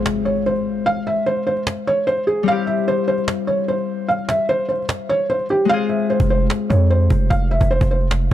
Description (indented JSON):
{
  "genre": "hip hop, trap",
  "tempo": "149 BPM",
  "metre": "4/4",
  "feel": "half-time",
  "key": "F harmonic minor",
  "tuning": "A4 = 441 Hz",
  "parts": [
    { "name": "Celtic harp", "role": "accompaniment", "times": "0.0-8.3 s", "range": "G3 to Ab4", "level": "-23 LUFS", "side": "left 6 dB", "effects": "none" },
    { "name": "impact", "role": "sound effects", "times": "0.0-0.9 s", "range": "none", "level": "-35 LUFS", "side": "right 1 dB", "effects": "none" },
    { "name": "cajon", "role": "drums", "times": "0.1-8.3 s", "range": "none", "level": "-24 LUFS", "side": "right 1 dB", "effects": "none" },
    { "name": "felt-muted upright piano", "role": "melody", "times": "0.3-8.1 s", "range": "G4 to F5", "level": "-20 LUFS", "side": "right 1 dB", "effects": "none" },
    { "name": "distorted 808-style bass", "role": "bass", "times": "6.2-8.3 s", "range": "F1 to F2", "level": "-16 LUFS", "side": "right 1 dB", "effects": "distortion" }
  ],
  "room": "little or no reverb",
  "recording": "dark, warm production",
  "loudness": "-16 LUFS",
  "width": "side -12 dB against mid",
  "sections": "0.0-8.3 A section",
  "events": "break 0.0-5.7; impact 0.0-0.9; kick muted 5.7-6.1",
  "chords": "0.0 Fm; 2.5 C; 5.7 Fm"
}